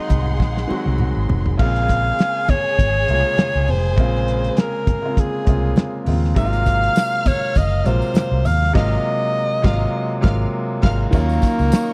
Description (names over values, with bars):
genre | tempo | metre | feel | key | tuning
lush 1970s-style soul | 101 BPM | 4/4 | swing 54% on 16ths | unclear | A4 = 439 Hz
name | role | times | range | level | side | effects
warm alto saxophone | melody | 0.0-11.9 s | Bb3 to F5 | -24 LUFS | equal | none
warm studio string section | second line | 0.0-11.9 s | Ab4 to F6 | -34 LUFS | equal | none
clear grand piano | accompaniment | 0.0-11.9 s | C3 to Gb4 | -26 LUFS | equal | none
vintage muted fingered electric bass | bass | 0.1-11.7 s | F1 to Eb2 | -22 LUFS | equal | none
cloth-damped thuddy drum kit | drums | 0.1-11.9 s | crash cymbal, hi-hat, kick drum, snare drum, toms | -20 LUFS | equal | none
congas | percussion | 0.1-8.6 s | none | -31 LUFS | equal | none
tambourine | percussion | 6.4-11.9 s | none | -45 LUFS | equal | none
room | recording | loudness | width
small room ambience | dry, close 1970s-style studio recording | -19 LUFS | mono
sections
0.0-1.6 A section; 1.6-11.1 B section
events
drum fill 0.4-1.6; band accent 8.7-11.1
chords
0.0 Ab7; 1.6 Bbm9; 6.4 Ab13; 11.1 Ebm9